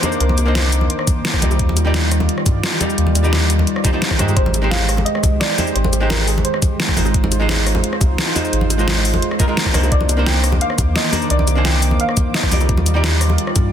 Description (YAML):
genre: liquid drum and bass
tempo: 173 BPM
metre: 4/4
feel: straight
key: C minor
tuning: A4 = 443 Hz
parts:
  - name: soft round pluck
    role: melody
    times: 0.0-0.9, 4.4-6.9, 9.9-12.7 s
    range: Ab4 to Ab5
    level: -24 LUFS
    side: right 1 dB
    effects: lush chorus, ping-pong delay
  - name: archtop guitar, miked and amplified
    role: accompaniment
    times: 0.0-13.7 s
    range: G3 to D5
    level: -23 LUFS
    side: right 1 dB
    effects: digital delay
  - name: warm analog pad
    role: sustained chords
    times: 0.0-13.7 s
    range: Eb3 to D6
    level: -24 LUFS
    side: equal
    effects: chorus, sidechain pumping
  - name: pop drum kit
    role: drums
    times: 0.0-13.6 s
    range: cabasa, hi-hat, rim click, snare drum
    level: -20 LUFS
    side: equal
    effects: overdrive
  - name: congas and bongos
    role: percussion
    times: 0.0-13.6 s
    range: none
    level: -26 LUFS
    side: equal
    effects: none
  - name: warm sub bass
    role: bass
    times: 0.2-13.7 s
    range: Ab1 to G2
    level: -17 LUFS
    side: equal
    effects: tube saturation
  - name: electronic kick drum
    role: drums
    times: 1.1-13.6 s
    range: none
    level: -18 LUFS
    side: equal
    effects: none
room: light reverb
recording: dense, heavily limited modern master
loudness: -14 LUFS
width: side -9 dB against mid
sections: 0.0-13.7 A section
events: none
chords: 0.0 Cm9; 1.6 Ebmaj9; 4.4 Abmaj7; 7.1 Fm7/Ab; 9.9 Cm9; 12.7 Ebmaj9